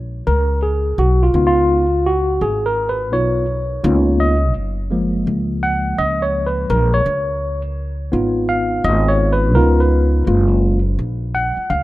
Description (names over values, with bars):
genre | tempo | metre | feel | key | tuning
hip hop, jazz-hop | 84 BPM | 4/4 | swing 63% on 16ths | F# major | A4 = 445 Hz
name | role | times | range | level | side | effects
upright bass | bass | 0.0-11.8 s | F#1 to C#2 | -18 LUFS | equal | none
tine electric piano | accompaniment | 0.3-11.8 s | E#3 to F#5 | -17 LUFS | equal | medium stereo tremolo
room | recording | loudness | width
light reverb, studio ambience | rough home demo mix | -15 LUFS | side -17 dB against mid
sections
0.0-11.8 A section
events
tine electric piano solo 0.0-11.8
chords
0.0 F#; 1.3 C#9; 3.8 C#13; 4.6 F#maj7; 7.1 C#9; 9.6 C#13; 10.3 F#maj7